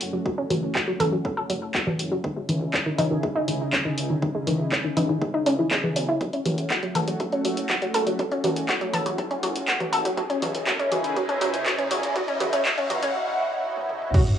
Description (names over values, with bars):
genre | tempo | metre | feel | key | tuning
melodic techno | 121 BPM | 4/4 | straight | unclear | A4 = 441 Hz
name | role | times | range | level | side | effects
lush unison pad | sustained chords | 0.0-14.4 s | C#3 to G#4 | -30 LUFS | equal | chorus, phaser, sidechain pumping, cassette tape
dark detuned saw bass | bass | 0.0-13.1 s | F#1 to C#2 | -34 LUFS | equal | sidechain pumping, high-pass filter
punchy analog drum machine | drums | 0.0-14.4 s | congas, crash cymbal, handclaps, hi-hat, toms | -26 LUFS | equal | sidechain pumping on hats, cassette tape, sidechain pumping on perc, sidechain pumping on toms, sidechain pumping on cymbals
analog pluck | arpeggios | 0.1-14.2 s | D#3 to A4 | -26 LUFS | equal | chorus, sidechain pumping, cassette tape, tape echo
electronic kick drum | drums | 0.3-14.2 s | none | -28 LUFS | equal | high-pass filter on kick, cassette tape, high-pass filter on room
riser and sub drop | sound effects | 8.2-14.4 s | none | -32 LUFS | equal | none
room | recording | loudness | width
wet booth ambience, RT60 0.2 s | home recording on cassette, high-pass filter, small room ambience | -22 LUFS | side -9 dB against mid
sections
0.0-14.1 A section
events
build-up 0.0-14.1; filter sweep on synth arpeggio sound 0.0-14.1; filter sweep on analog synth pad 0.0-14.1; riser 8.2-13.1; break 13.1-14.1; drum fill 13.8-14.1; impact 14.1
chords
0.0 F#m; 2.2 C#madd9; 6.2 F#m; 10.2 C#madd9